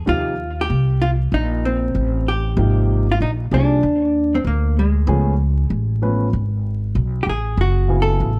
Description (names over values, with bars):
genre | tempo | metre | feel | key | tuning
hip hop | 96 BPM | 4/4 | swing 65% on 16ths | unclear | A4 = 439 Hz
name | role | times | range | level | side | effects
upright bass | bass | 0.0-8.4 s | F#1 to D#2 | -21 LUFS | equal | none
hollow-body jazz guitar | melody | 0.1-8.4 s | G#3 to A4 | -24 LUFS | equal | analog delay
dark upright piano | accompaniment | 0.1-8.3 s | C3 to B4 | -25 LUFS | equal | none
room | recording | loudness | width
light reverb | vinyl crackle | -19 LUFS | mono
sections
0.0-8.4 A section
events
hollow-body jazz guitar solo 0.0-8.4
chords
0.1 D#add9; 2.6 G#maj9; 5.1 C#7b13; 7.6 F#m11